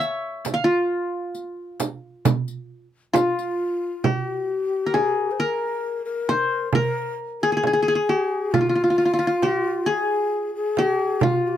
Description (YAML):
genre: Arabic maqam ensemble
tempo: 134 BPM (eighths)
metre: 10/8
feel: straight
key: unclear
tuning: A4 = 442 Hz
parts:
  - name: qanun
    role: melody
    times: 0.0-11.6 s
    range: F4 to F5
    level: -22 LUFS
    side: left 1 dB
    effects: none
  - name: riq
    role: percussion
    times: 0.0-3.5 s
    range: none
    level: -31 LUFS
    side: left 5 dB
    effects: none
  - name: frame drum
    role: percussion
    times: 0.5-11.4 s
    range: none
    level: -24 LUFS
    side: right 5 dB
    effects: none
  - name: breathy ney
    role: second line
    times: 3.2-11.6 s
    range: Eb4 to C5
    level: -26 LUFS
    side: left 2 dB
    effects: none
room: moderate booth ambience, RT60 0.2 s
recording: none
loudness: -20 LUFS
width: side -11 dB against mid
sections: 0.0-4.0 A section; 4.0-11.6 B section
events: none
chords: none